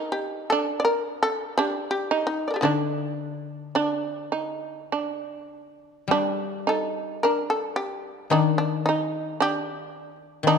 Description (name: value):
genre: japanese traditional, Japanese chamber music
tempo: 50-57 BPM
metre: 2/4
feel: rubato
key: D miyako bushi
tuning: A4 = 441 Hz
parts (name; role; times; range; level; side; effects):
- shamisen; melody; 0.0-10.6 s; D4 to D5; -26 LUFS; left 1 dB; none
- shamisen; second line; 0.0-10.6 s; D4 to Eb4; -27 LUFS; right 5 dB; none
- koto; accompaniment; 2.6-10.6 s; D3 to G3; -27 LUFS; left 8 dB; none
room: moderate concert hall reverb, RT60 2.2 s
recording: dark, warm production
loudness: -23 LUFS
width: side -6 dB against mid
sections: 0.0-6.1 A section; 6.1-10.6 B section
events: none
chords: none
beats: 0.48 | 1.57 2.65 | 3.75 4.92 | 6.09 7.21 | 8.31 9.38 | 10.44